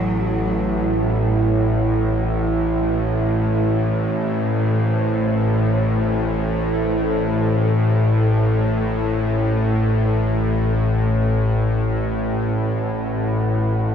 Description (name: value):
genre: dark ambient drone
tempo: free time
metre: none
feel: none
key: unclear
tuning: A4 = 440 Hz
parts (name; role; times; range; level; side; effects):
- rich cello; melody; 0.0-1.5 s; F#3; -29 LUFS; equal; diffuse ambient delay
- deep dark ambient pad; sustained chords; 0.0-13.9 s; A3 to G#5; -26 LUFS; right 4 dB; chorus, built-in reverb
- bowed-like drone; drone; 0.0-13.9 s; A1 to A2; -18 LUFS; left 1 dB; built-in reverb
room: moderate huge ambient reverb, RT60 8.7 s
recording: none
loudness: -17 LUFS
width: side -8 dB against mid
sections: 0.0-13.9 A section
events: fade-out on ambient pad 0.0-13.9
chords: 0.0 Eadd9; 2.0 Am; 9.8 Eadd9